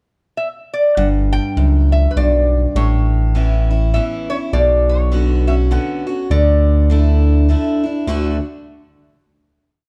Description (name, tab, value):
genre	honky-tonk and classic country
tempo	101 BPM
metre	3/4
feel	swing 60% on 8ths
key	D major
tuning	A4 = 440 Hz
part	lap resonator guitar	melody	0.4-7.4 s	B4 to G5	-22 LUFS	equal	none
part	picked steel-string acoustic guitar	accompaniment	1.0-8.4 s	F#2 to F#4	-23 LUFS	equal	none
part	smooth gliding synth bass	bass	1.0-8.4 s	G1 to D2	-16 LUFS	equal	none
room	light reverb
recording	dark, warm production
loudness	-16 LUFS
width	mono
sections	0.0-1.0 pickup bar; 1.0-8.1 verse; 8.1-9.8 final chord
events	none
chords	0.0 N.C.; 1.0 G; 2.8 Aadd9; 4.5 Bmadd9; 6.3 Dsus2; 8.1 D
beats	0.38 | 0.97 1.56 2.16 | 2.75 3.34 3.94 | 4.53 5.12 5.71 | 6.30 6.89 7.48 | 8.07